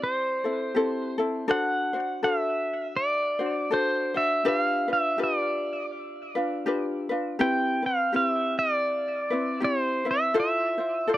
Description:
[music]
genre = Hawaiian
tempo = 81 BPM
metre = 4/4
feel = swing 60% on 8ths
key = C major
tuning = A4 = 440 Hz
[part]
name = pedal steel guitar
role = melody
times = 0.0-11.2 s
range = C5 to G5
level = -26 LUFS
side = right 1 dB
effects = tape echo
[part]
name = ukulele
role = accompaniment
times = 0.0-11.2 s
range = C4 to C5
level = -28 LUFS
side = left 2 dB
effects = none
[sound]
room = light reverb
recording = dry, close 1970s-style studio recording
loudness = -24 LUFS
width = side -14 dB against mid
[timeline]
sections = 0.0-11.2 A section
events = none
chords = 0.0 C6; 1.5 D7; 4.4 G7; 7.4 Cmaj7; 10.3 Fmaj7

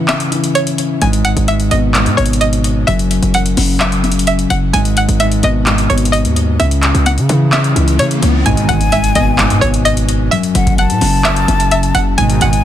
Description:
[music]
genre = hip hop, trap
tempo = 129 BPM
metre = 4/4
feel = half-time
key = G# phrygian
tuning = A4 = 439 Hz
[part]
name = string-like resonator pluck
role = melody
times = 0.0-12.6 s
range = C#5 to G#5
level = -18 LUFS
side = right 1 dB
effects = chorus, low-pass filter, ping-pong delay
[part]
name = dark grand piano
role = accompaniment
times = 0.0-12.6 s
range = F#2 to E3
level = -16 LUFS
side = left 2 dB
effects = low-pass filter
[part]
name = booming analog drum machine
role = drums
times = 0.1-12.6 s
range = handclaps, hi-hat, kick drum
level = -19 LUFS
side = equal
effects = none
[part]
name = hard-hitting 808-style bass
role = bass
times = 1.0-12.6 s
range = F#1 to C#3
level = -15 LUFS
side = right 1 dB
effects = none
[part]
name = riser and impact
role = sound effects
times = 7.4-10.3 s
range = none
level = -23 LUFS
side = equal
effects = none
[part]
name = breathy concert flute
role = second line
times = 8.5-12.6 s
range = F#5 to A5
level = -19 LUFS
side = left 4 dB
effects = ping-pong delay
[part]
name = mellow synth brass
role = stabs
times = 8.5-8.8, 12.2-12.5 s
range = G#2 to D#3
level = -19 LUFS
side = right 3 dB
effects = chorus
[sound]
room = little or no reverb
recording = dense, heavily limited modern master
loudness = -11 LUFS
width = side -11 dB against mid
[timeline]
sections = 0.0-8.5 A section; 8.5-12.6 B section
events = break 0.0-1.0; riser 7.4-8.5; impact 8.5-10.3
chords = 0.0 C#m; 1.0 G#m; 2.9 F#5; 4.7 G#m; 6.6 C#m; 8.5 G#m; 10.3 F#m7

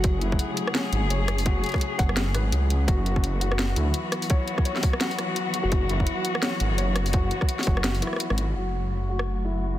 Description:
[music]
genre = half-time drum and bass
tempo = 169 BPM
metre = 4/4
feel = swing 59% on 16ths, half-time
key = F# minor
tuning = A4 = 440 Hz
[part]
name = bell-like FM electric piano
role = melody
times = 0.0-0.2, 5.6-5.9 s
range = F#4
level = -38 LUFS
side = left 2 dB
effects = none
[part]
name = dark symphonic cello section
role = sustained chords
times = 0.0-9.8 s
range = C#3 to G#4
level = -30 LUFS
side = left 2 dB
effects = sidechain pumping, low-pass filter
[part]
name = felt-muted upright piano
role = arpeggios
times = 0.0-9.8 s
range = E4 to F#5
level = -34 LUFS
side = left 2 dB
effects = vintage 12-bit sampler grit, low-pass filter, dub echo
[part]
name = dark detuned saw bass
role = bass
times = 0.0-9.8 s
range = F#1 to D2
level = -25 LUFS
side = equal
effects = none
[part]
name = drum and bass drum kit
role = drums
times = 0.0-9.3 s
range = hi-hat, rim click, snare drum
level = -29 LUFS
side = equal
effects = overdrive, low-pass filter on hats, low-pass filter on snare
[part]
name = electronic kick drum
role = drums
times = 0.0-7.8 s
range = none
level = -23 LUFS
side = equal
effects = overdrive
[sound]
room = digital ambience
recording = dense, heavily limited modern master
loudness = -22 LUFS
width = side -13 dB against mid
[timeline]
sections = 0.0-8.6 A section; 8.6-9.8 B section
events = drop 0.0-8.6; filter sweep on drum 8.6-9.8; filter sweep on cello section 8.6-9.8; filter sweep on felt piano 8.6-9.8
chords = 0.0 F#m; 2.9 Esus2/F#; 8.6 F#m

